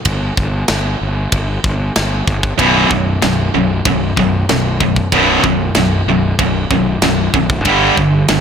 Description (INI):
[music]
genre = heavy metal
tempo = 95 BPM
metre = 4/4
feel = straight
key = B minor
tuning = A4 = 440 Hz
[part]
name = fuzz fingered electric bass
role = bass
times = 0.1-8.4 s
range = B0 to G1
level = -18 LUFS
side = equal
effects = overdrive
[part]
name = tight metal drum kit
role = drums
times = 0.1-8.4 s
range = kick drum, ride cymbal, snare drum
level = -18 LUFS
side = equal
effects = none
[part]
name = distorted electric guitar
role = riff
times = 2.6-8.4 s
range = B1 to G3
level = -16 LUFS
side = left 10 dB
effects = distortion
[part]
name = tight distorted guitar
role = riff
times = 2.6-8.4 s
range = B1 to G3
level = -15 LUFS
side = right 9 dB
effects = distortion
[sound]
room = small room ambience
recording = none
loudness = -12 LUFS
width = side -7 dB against mid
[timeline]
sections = 0.0-8.4 A section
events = none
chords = 0.0 N.C.; 2.6 B5; 7.7 G5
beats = | 0.06 0.70 1.33 1.96 | 2.59 3.23 3.86 4.49 | 5.13 5.76 6.39 7.03 | 7.66 8.29